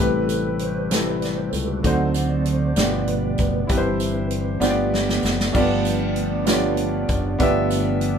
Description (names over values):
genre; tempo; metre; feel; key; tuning
slow gospel; 65 BPM (dotted quarters); 6/8; straight; unclear; A4 = 440 Hz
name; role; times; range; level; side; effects
warm grand piano; accompaniment; 0.0-8.2 s; G2 to E5; -22 LUFS; equal; none
mellow French horn section; sustained chords; 0.0-8.2 s; B2 to D5; -34 LUFS; right 4 dB; none
mellow tonewheel organ; sustained chords; 0.0-8.2 s; B2 to D5; -26 LUFS; right 2 dB; fast rotary speaker, chorus vibrato
fingered electric bass; bass; 0.0-8.2 s; F#1 to D2; -26 LUFS; left 1 dB; none
natural country drum kit; drums; 0.3-8.2 s; crash cymbal, hi-hat, kick drum, snare drum; -25 LUFS; equal; none
tambourine; percussion; 0.3-8.0 s; none; -35 LUFS; right 5 dB; none
room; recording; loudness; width
moderate studio ambience, RT60 0.5 s; band playing live in one room; -19 LUFS; side -7 dB against mid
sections
0.0-5.6 A section; 5.6-8.2 B section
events
tonewheel organ solo 0.0-5.6; drum fill 4.6-5.6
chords
0.0 Am9; 1.8 D7b9; 2.8 G7; 3.7 C/G; 4.6 G7